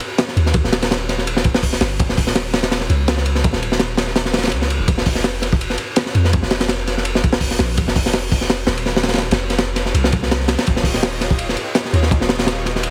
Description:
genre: drum and bass, jungle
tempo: 166 BPM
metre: 4/4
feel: swing 54% on 16ths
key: unclear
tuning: A4 = 439 Hz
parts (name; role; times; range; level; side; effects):
- crunchy breakbeat drum kit; drums; 0.0-12.9 s; hi-hat, kick drum, ride cymbal, snare drum; -19 LUFS; equal; none
- long sustained 808-style bass; bass; 0.4-12.9 s; Eb1 to F2; -24 LUFS; equal; none
- lush unison pad; sustained chords; 10.7-12.9 s; F4 to Eb5; -30 LUFS; equal; chorus
room: little or no reverb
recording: heavily compressed radio sound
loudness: -18 LUFS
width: mono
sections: 0.0-12.9 A section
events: none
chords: 0.0 Eb7(no3); 4.9 N.C.; 10.7 Eb9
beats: 0.18 | 0.54 0.91 1.27 1.63 | 1.99 2.35 2.71 3.07 | 3.44 3.80 4.16 4.52 | 4.88 5.24 5.60 5.97 | 6.33 6.69 7.05 7.41 | 7.77 8.13 8.50 8.86 | 9.22 9.58 9.94 10.30 | 10.66 11.03 11.39 11.75 | 12.11 12.47 12.83

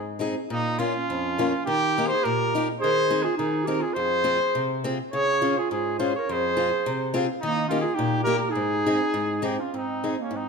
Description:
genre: alpine folk, alpine dance band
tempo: 104 BPM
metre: 2/4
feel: straight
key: Ab major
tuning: A4 = 440 Hz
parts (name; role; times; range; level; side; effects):
- warm trumpet; melody; 0.0-10.5 s; Db4 to Db5; -26 LUFS; equal; none
- dark clarinet; second line; 0.0-10.5 s; Bb3 to Bb4; -29 LUFS; right 5 dB; none
- fingerpicked steel-string acoustic guitar; accompaniment; 0.0-10.5 s; F2 to Ab4; -27 LUFS; left 2 dB; none
room: moderate recital hall reverb, RT60 1.6 s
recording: none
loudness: -22 LUFS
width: side -5 dB against mid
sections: 0.5-9.7 A section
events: none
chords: 0.0 Ab; 0.5 Bbm; 1.7 Eb; 2.8 Ab/Eb; 4.0 Fm; 5.1 Db; 6.3 Fm; 7.4 Eb; 8.6 Ab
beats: | 0.51 1.09 | 1.67 2.25 | 2.82 3.39 | 3.96 4.54 | 5.12 5.70 | 6.27 6.84 | 7.41 7.97 | 8.55 9.13 | 9.71 10.30

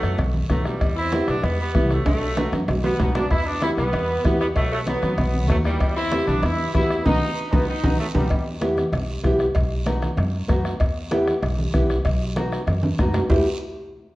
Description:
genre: latin, cumbia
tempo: 192 BPM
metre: 4/4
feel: straight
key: E harmonic minor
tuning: A4 = 440 Hz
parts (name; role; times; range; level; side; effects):
- bright saxophone section; melody; 0.0-8.4 s; E3 to E4; -26 LUFS; right 1 dB; none
- nylon-string guitar; accompaniment; 0.0-13.4 s; B3 to G4; -25 LUFS; equal; none
- upright bass; bass; 0.0-13.4 s; B1 to F#2; -25 LUFS; equal; none
- bombo; percussion; 0.0-13.4 s; none; -25 LUFS; left 1 dB; none
- guiro; percussion; 0.0-13.4 s; none; -42 LUFS; right 3 dB; none
- congas; percussion; 0.2-13.4 s; none; -29 LUFS; right 1 dB; none
- cowbell and timbales; percussion; 0.2-13.4 s; none; -30 LUFS; right 2 dB; none
- growling trumpet; second line; 2.8-8.4 s; G3 to E4; -30 LUFS; left 2 dB; none
room: wet large studio reverb, RT60 1.4 s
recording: worn, warbling old tape, cassette tape, warbly pitch drift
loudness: -19 LUFS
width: side -18 dB against mid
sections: 0.0-8.3 A section; 8.3-13.3 B section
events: drum fill 2.1-3.3, 7.5-8.3, 12.7-13.3; band accent 7.1-8.3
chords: 0.0 B7; 0.8 Em; 2.1 B7; 3.3 Em; 4.6 B; 5.8 Em; 7.1 B; 8.3 Em; 9.6 B; 10.8 Em; 12.1 B; 13.3 Em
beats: 0.18 0.50 | 0.81 1.12 1.43 1.75 | 2.06 2.37 2.68 3.00 | 3.31 3.62 3.93 4.25 | 4.56 4.87 5.18 5.50 | 5.81 6.12 6.43 6.74 | 7.06 7.37 7.68 7.99 | 8.30 8.62 8.93 9.24 | 9.55 9.87 10.18 10.49 | 10.80 11.12 11.43 11.74 | 12.05 12.36 12.68 12.99 | 13.30

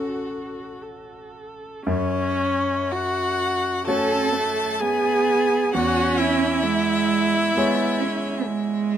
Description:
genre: classical, slow romantic movement for piano quartet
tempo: 55-67 BPM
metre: 4/4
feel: rubato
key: F# minor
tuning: A4 = 440 Hz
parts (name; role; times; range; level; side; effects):
- warm violin; melody; 0.0-8.9 s; A4 to A5; -28 LUFS; left 5 dB; none
- rich cello; second line; 0.0-9.0 s; G#3 to F#4; -24 LUFS; right 4 dB; none
- warm grand piano; accompaniment; 0.0-9.0 s; A1 to C#5; -27 LUFS; left 1 dB; none
- warm viola; accompaniment; 0.0-8.9 s; C#4 to A4; -24 LUFS; right 1 dB; none
room: little or no reverb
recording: close, detailed microphones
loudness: -19 LUFS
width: side -9 dB against mid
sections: 0.0-1.9 A section; 1.9-9.0 B section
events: none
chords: 0.0 F#m/A; 1.9 F#m; 5.7 C#m/E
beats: 0.83 | 1.85 2.90 3.87 4.81 | 5.74 6.64 7.56 8.48

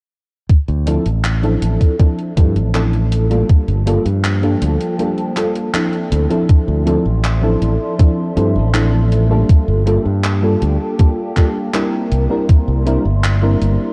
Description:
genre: vaporwave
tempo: 80 BPM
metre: 4/4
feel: straight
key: D minor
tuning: A4 = 440 Hz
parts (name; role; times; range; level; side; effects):
- modern bright fingered electric bass; bass; 0.5-13.8 s; G1 to G2; -18 LUFS; equal; tube saturation
- electronic kick drum; drums; 0.5-12.6 s; none; -12 LUFS; equal; none
- gated 80s digital drum machine; drums; 0.5-13.8 s; handclaps, hi-hat; -28 LUFS; equal; gated reverb
- mellow FM electric piano; accompaniment; 0.9-13.9 s; F3 to Bb4; -21 LUFS; equal; ensemble chorus, tape echo
- warbly tape-like pad; sustained chords; 3.5-13.9 s; F3 to C6; -29 LUFS; equal; chorus, built-in reverb
room: digital ambience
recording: cassette tape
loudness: -15 LUFS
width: mono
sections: 0.5-6.5 A section; 6.5-13.9 B section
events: break 5.0-6.5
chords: 0.5 Dm9; 3.5 Gm9; 6.1 Dm9; 9.5 Gm9; 12.1 C9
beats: | 0.49 1.24 1.99 2.74 | 3.49 4.24 4.99 5.74 | 6.49 7.24 7.99 8.74 | 9.49 10.24 10.99 11.74 | 12.49 13.24

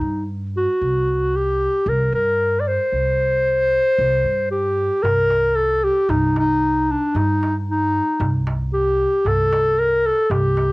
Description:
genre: Arabic maqam ensemble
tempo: 114 BPM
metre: 4/4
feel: straight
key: C maqam nikriz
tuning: A4 = 441 Hz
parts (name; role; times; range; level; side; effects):
- warm clarinet; melody; 0.0-10.7 s; D4 to D5; -18 LUFS; equal; cassette tape, plate reverb
- upright bass; bass; 0.0-10.7 s; C2 to G2; -24 LUFS; equal; none
- darbuka; percussion; 5.0-10.7 s; none; -25 LUFS; right 1 dB; none
room: moderate small room reverb, RT60 0.5 s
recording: home recording on cassette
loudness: -16 LUFS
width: side -23 dB against mid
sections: 0.0-5.0 A section; 5.0-10.7 B section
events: none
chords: none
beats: 0.28 | 0.81 1.34 1.87 2.40 | 2.93 3.46 3.98 4.51 | 5.04 5.57 6.10 6.62 | 7.15 7.67 8.20 8.72 | 9.25 9.78 10.30

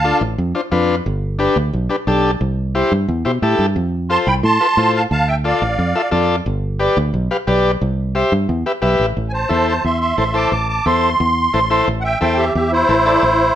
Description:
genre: latin, cumbia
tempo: 177 BPM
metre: 4/4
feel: straight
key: A minor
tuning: A4 = 441 Hz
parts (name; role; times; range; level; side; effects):
- musette accordion; melody; 0.0-0.2, 4.1-6.1, 9.3-13.6 s; E4 to D6; -16 LUFS; right 1 dB; none
- overdriven combo organ; accompaniment; 0.0-13.2 s; D4 to F5; -18 LUFS; left 2 dB; none
- fingered electric bass; bass; 0.0-13.5 s; G1 to B2; -19 LUFS; equal; none
room: moderate studio reverb, RT60 0.8 s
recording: none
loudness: -14 LUFS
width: side -11 dB against mid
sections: 0.0-9.2 A section; 9.2-13.6 B section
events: accordion solo 9.2-13.6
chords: 0.0 Dm; 1.1 G; 2.4 C; 3.8 F; 5.1 Dm; 6.5 G; 7.8 C; 8.5 Em; 9.2 Am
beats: 0.04 0.38 0.72 | 1.06 1.40 1.74 2.07 | 2.41 2.75 3.09 3.43 | 3.77 4.10 4.44 4.78 | 5.12 5.46 5.79 6.13 | 6.47 6.81 7.14 7.48 | 7.82 8.16 8.49 8.83 | 9.17 9.51 9.85 10.18 | 10.52 10.86 11.20 11.54 | 11.88 12.21 12.55 12.89 | 13.23

